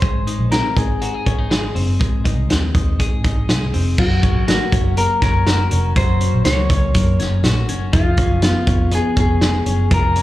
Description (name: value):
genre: jangly indie pop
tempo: 121 BPM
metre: 4/4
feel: straight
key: unclear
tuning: A4 = 440 Hz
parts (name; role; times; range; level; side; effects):
- electric guitar through a small old amp; melody; 0.0-10.2 s; F4 to Db5; -22 LUFS; left 2 dB; none
- twelve-string electric guitar; arpeggios; 0.0-10.2 s; F3 to Ab4; -23 LUFS; left 4 dB; slapback echo
- vintage muted picked electric bass; bass; 0.0-10.2 s; F1 to Ab2; -18 LUFS; equal; none
- loose indie drum kit; drums; 0.0-10.2 s; crash cymbal, hi-hat, kick drum, snare drum; -18 LUFS; equal; none
room: small room ambience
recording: live gig heard through the venue's PA, club reverb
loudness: -14 LUFS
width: side -15 dB against mid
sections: 0.0-4.0 A section; 4.0-10.2 B section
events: none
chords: 0.0 Ab; 4.0 Gb; 7.9 Db7/F